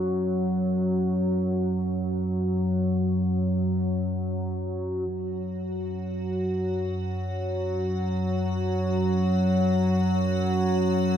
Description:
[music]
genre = dark ambient drone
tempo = free time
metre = none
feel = none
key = unclear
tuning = A4 = 440 Hz
[part]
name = analog drone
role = drone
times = 0.0-11.2 s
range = F#2 to F#3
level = -24 LUFS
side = equal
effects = chorus
[part]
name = icy glass pad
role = texture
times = 5.8-11.2 s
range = F#4 to F#5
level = -38 LUFS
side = equal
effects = chorus, built-in reverb
[sound]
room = wet huge ambient reverb, RT60 9.1 s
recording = none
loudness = -24 LUFS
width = side -9 dB against mid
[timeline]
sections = 0.0-5.1 A section; 5.1-11.2 B section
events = fade-in on ambient pad 5.1-11.2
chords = none

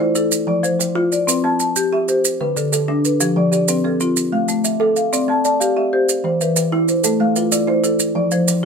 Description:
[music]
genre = southern african traditional, mbira-style interlocking cycle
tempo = 125 BPM (dotted quarters)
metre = 12/8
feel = straight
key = unclear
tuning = A4 = 439 Hz
[part]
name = kalimba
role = arpeggios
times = 0.0-8.7 s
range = D3 to F5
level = -20 LUFS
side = right 5 dB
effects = none
[part]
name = marimba with medium mallets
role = arpeggios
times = 0.0-8.7 s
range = D3 to A5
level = -17 LUFS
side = left 3 dB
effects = none
[part]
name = maracas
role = percussion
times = 0.2-8.6 s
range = none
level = -20 LUFS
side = right 6 dB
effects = none
[sound]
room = light reverb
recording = minimal, uncompressed stereo recording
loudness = -15 LUFS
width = side -5 dB against mid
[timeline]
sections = 0.0-8.7 A section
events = none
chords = 0.3 F; 1.3 C; 2.2 D5; 3.2 F; 4.2 A5; 5.1 C; 6.1 E5; 7.0 Am; 8.0 F

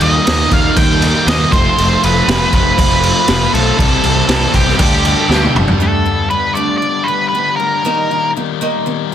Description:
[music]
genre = quiet-loud alternative rock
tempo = 119 BPM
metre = 4/4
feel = straight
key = unclear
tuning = A4 = 439 Hz
[part]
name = octave-fuzz lead guitar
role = melody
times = 0.0-8.3 s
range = G4 to G5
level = -16 LUFS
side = right 1 dB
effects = distortion, slapback echo
[part]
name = fuzz guitar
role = riff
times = 0.0-5.8 s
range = C3 to A4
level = -20 LUFS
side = right 1 dB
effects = distortion
[part]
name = thick fuzz guitar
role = riff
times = 0.0-9.1 s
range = G2 to A4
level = -20 LUFS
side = left 13 dB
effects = distortion
[part]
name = tight distorted guitar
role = riff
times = 0.0-5.8 s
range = C3 to A4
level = -22 LUFS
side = right 13 dB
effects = distortion
[part]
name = fuzz picked electric bass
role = bass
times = 0.0-5.7 s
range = F1 to Eb2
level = -17 LUFS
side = equal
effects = overdrive
[part]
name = raw garage drum kit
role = drums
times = 0.0-5.8 s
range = crash cymbal, kick drum, snare drum, toms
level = -14 LUFS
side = equal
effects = none
[part]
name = picked acoustic archtop guitar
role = arpeggios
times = 5.8-9.1 s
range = Eb3 to Eb4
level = -21 LUFS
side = right 3 dB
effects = slapback echo
[sound]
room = small room ambience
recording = dense, heavily limited modern master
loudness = -11 LUFS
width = side -10 dB against mid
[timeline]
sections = 0.0-5.8 A section; 5.8-9.1 B section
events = drum fill 5.3-5.8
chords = 0.0 Eb; 1.5 F; 3.8 C6; 4.8 Dsus4; 5.8 Gadd9; 7.8 Eb

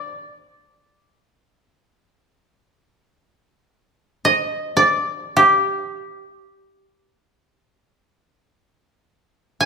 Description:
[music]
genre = japanese traditional, Japanese chamber music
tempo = free time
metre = none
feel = none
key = unclear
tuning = A4 = 438 Hz
[part]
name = koto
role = solo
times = 0.0-9.7 s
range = G4 to Ab5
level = -16 LUFS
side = right 1 dB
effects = none
[sound]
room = moderate recital hall reverb, RT60 1.4 s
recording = minimal, uncompressed stereo recording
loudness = -16 LUFS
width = side -5 dB against mid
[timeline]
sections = 0.0-8.7 A section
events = none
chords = none

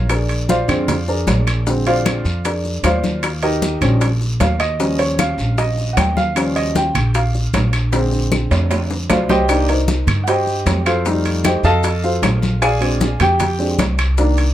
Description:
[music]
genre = Afro-Cuban jazz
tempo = 153 BPM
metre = 4/4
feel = straight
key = Bb mixolydian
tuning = A4 = 440 Hz
[part]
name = warm upright piano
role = accompaniment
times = 0.0-14.4 s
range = D3 to A5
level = -19 LUFS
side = equal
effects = none
[part]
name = upright bass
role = bass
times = 0.0-14.5 s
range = Bb1 to G2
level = -19 LUFS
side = equal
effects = none
[part]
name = bongos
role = percussion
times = 0.1-14.5 s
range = none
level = -26 LUFS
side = left 4 dB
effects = none
[part]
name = claves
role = percussion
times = 0.1-14.2 s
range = none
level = -26 LUFS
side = left 5 dB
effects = none
[part]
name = congas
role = percussion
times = 0.1-14.5 s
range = none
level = -22 LUFS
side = left 1 dB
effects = none
[part]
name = guiro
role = percussion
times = 0.1-14.5 s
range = none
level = -32 LUFS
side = left 1 dB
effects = none
[part]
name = maracas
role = percussion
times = 0.1-14.5 s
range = none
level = -34 LUFS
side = left 4 dB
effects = none
[part]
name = timbales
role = percussion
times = 0.1-14.5 s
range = none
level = -25 LUFS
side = right 4 dB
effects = none
[sound]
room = light reverb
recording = none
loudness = -15 LUFS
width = side -12 dB against mid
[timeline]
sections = 0.0-14.5 A section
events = upright piano solo 0.0-14.5; drum fill 7.9-9.5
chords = 0.1 Bb9; 3.2 Eb9; 7.9 Bb9; 9.5 Cm7; 11.1 F9; 12.6 Bb9

